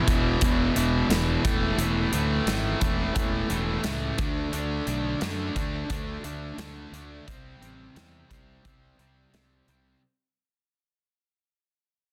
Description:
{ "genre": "hard rock", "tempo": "88 BPM", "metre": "4/4", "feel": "straight", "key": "unclear", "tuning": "A4 = 439 Hz", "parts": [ { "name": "cranked stack guitar", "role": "riff", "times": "0.0-10.0 s", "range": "E2 to D4", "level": "-30 LUFS", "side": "equal", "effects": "overdrive" }, { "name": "fuzz fingered electric bass", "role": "bass", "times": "0.1-9.9 s", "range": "E1 to F#2", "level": "-32 LUFS", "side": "equal", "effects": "overdrive" }, { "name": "big rock drum kit", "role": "drums", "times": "0.1-9.8 s", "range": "hi-hat, kick drum, snare drum", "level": "-31 LUFS", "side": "equal", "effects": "none" } ], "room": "light reverb, small room ambience", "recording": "dense, heavily limited modern master", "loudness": "-26 LUFS", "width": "mono", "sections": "0.0-10.0 A section", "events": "fade-out 0.0-10.0", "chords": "0.0 E5; 1.4 A5/E; 4.2 D5; 7.3 C5" }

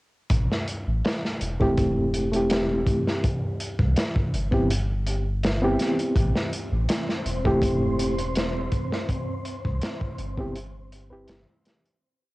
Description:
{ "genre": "trip hop", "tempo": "82 BPM", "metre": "4/4", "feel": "swing 53% on 16ths", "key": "A minor", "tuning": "A4 = 441 Hz", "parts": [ { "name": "warm sub bass", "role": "bass", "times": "0.3-11.5 s", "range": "E1 to C2", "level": "-27 LUFS", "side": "equal", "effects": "tube saturation" }, { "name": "crunchy breakbeat drum kit", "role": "drums", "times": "0.3-12.0 s", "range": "hi-hat, kick drum, snare drum", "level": "-26 LUFS", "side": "equal", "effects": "cassette tape" }, { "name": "reed electric piano", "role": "accompaniment", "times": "1.6-11.4 s", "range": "A3 to B4", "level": "-25 LUFS", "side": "equal", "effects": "fast tremolo, harmonic tremolo, cassette tape, tape echo" }, { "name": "wind-like tuned noise texture", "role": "texture", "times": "6.7-12.0 s", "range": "C4 to C5", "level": "-34 LUFS", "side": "right 1 dB", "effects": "built-in reverb, cassette tape" } ], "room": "studio ambience", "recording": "home recording on cassette", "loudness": "-22 LUFS", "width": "side -20 dB against mid", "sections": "0.3-12.0 groove", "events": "fade-out 8.1-12.0", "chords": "0.3 Am7; 3.2 Cmaj7; 6.2 Am7; 9.1 Cmaj7" }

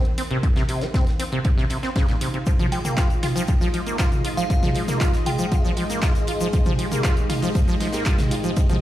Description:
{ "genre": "acid house", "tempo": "118 BPM", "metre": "4/4", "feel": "straight", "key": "unclear", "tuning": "A4 = 441 Hz", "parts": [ { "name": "acid bass, saw", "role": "riff", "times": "0.0-8.8 s", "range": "Bb2 to F4", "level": "-26 LUFS", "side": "equal", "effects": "wide subtle chorus, ping-pong delay" }, { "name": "deep dark ambient pad", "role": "texture", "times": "0.1-8.8 s", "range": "Ab3 to C6", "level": "-33 LUFS", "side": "right 1 dB", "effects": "chorus, built-in reverb, sidechain pumping" }, { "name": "punchy analog drum machine", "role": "drums", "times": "0.1-8.8 s", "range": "finger snaps, handclaps, hi-hat, toms", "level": "-28 LUFS", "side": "equal", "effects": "none" }, { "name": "modern studio drum kit", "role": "drums", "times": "0.2-8.8 s", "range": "hi-hat, ride cymbal, snare drum", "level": "-39 LUFS", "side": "right 1 dB", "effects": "sidechain pumping on cymbals, high-pass filter on cymbals, sidechain pumping on hats, high-pass filter on hats, high-pass filter on snare, high-pass filter on room" }, { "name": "electronic kick drum", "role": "drums", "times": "0.4-8.7 s", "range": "none", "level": "-21 LUFS", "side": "equal", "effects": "none" }, { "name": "string machine, full ensemble", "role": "sustained chords", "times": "2.5-8.8 s", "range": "Ab3 to Eb5", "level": "-30 LUFS", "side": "equal", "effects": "phaser, ensemble chorus, sidechain pumping" }, { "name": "tube shaker", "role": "percussion", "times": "2.5-8.8 s", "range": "none", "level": "-39 LUFS", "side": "left 4 dB", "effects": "none" }, { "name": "glassy synth bell", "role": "melody", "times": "2.7-5.6 s", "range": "F5 to G5", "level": "-32 LUFS", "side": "right 2 dB", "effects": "chorus, tape echo" } ], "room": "light reverb, small room ambience", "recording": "played on a big sound system in a bare room, large studio reverb", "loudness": "-19 LUFS", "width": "side -14 dB against mid", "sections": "0.0-8.8 A section", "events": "fade-in on ambient pad 0.0-8.8", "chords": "0.0 Cm7; 2.5 Fm7" }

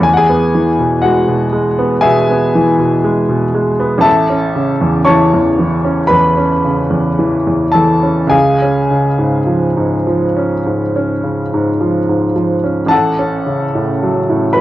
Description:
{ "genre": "classical, romantic nocturne for solo piano", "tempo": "51-61 BPM", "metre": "4/4", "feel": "rubato", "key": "unclear", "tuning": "A4 = 439 Hz", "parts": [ { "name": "bright baby grand piano", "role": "solo", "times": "0.0-14.6 s", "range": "A1 to C#6", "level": "-11 LUFS", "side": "equal", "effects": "none" } ], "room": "moderate stone room reverb, RT60 1.3 s", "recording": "worn, warbling old tape, cassette tape, warbly pitch drift", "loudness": "-11 LUFS", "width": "side -14 dB against mid", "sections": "0.0-14.6 A section", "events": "none", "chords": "0.0 E; 4.1 A; 8.3 C#; 12.9 F#m/A" }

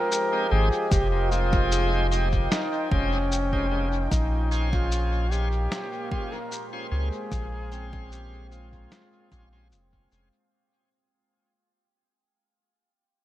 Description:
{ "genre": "ambient dub", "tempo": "75 BPM", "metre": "4/4", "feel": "swing 53% on 16ths", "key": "unclear", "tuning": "A4 = 444 Hz", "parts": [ { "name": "warm trombone", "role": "melody", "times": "0.0-10.1 s", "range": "Db4 to Bb4", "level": "-29 LUFS", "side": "equal", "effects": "dub echo" }, { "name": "deep dark ambient pad", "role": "sustained chords", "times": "0.0-10.5 s", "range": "Ab3 to G5", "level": "-35 LUFS", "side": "right 1 dB", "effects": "chorus, built-in reverb, vintage 12-bit sampler grit" }, { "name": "vibraphone with medium hard mallets", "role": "arpeggios", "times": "0.0-11.4 s", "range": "C4 to G5", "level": "-38 LUFS", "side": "equal", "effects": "dub echo" }, { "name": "electronic shaker and snare drum", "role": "drums", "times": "0.1-10.3 s", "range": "none", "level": "-34 LUFS", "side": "left 1 dB", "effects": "studio reverb, dub echo" }, { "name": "bright tonewheel organ", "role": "stabs", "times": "0.3-10.3 s", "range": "Ab3 to C5", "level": "-34 LUFS", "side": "left 2 dB", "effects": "overdrive, slow rotary speaker, dub echo" }, { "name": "soft dub sub bass", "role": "bass", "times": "0.5-10.3 s", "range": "F1 to Db2", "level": "-26 LUFS", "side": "equal", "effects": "none" }, { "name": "electronic kick drum", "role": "drums", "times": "0.9-10.1 s", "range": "none", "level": "-27 LUFS", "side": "equal", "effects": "studio reverb" } ], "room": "light reverb", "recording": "none", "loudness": "-23 LUFS", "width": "side -14 dB against mid", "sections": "0.0-10.5 A section", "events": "fade-out 2.0-10.5", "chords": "0.0 Fm9; 4.1 Bbm9" }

